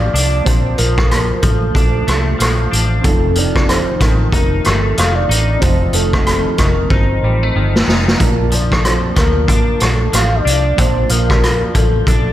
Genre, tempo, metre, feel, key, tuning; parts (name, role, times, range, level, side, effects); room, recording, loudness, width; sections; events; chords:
indie pop, bedroom pop; 93 BPM; 4/4; swing 60% on 16ths; Bb major; A4 = 441 Hz
soft octave-layered synth lead; melody; 0.0-12.3 s; A4 to F5; -20 LUFS; equal; lush chorus, slapback echo, ping-pong delay
clean electric guitar; accompaniment; 0.0-12.3 s; F2 to Eb4; -22 LUFS; left 2 dB; analog chorus, warbly pitch drift, slapback echo
warbly lo-fi synth keys; accompaniment; 0.0-12.3 s; Bb3 to A5; -26 LUFS; right 6 dB; chorus, cassette tape, slapback echo
vintage muted fingered electric bass; bass; 0.0-12.3 s; F1 to D2; -17 LUFS; equal
raw garage drum kit; drums; 0.2-12.3 s; hi-hat, kick drum, rim click, snare drum; -15 LUFS; equal
light reverb; -12 LUFS; side -13 dB against mid
0.0-12.3 A section
drum fill 6.9-8.2
0.0 Bbmaj7; 3.0 F7; 8.2 Bbmaj7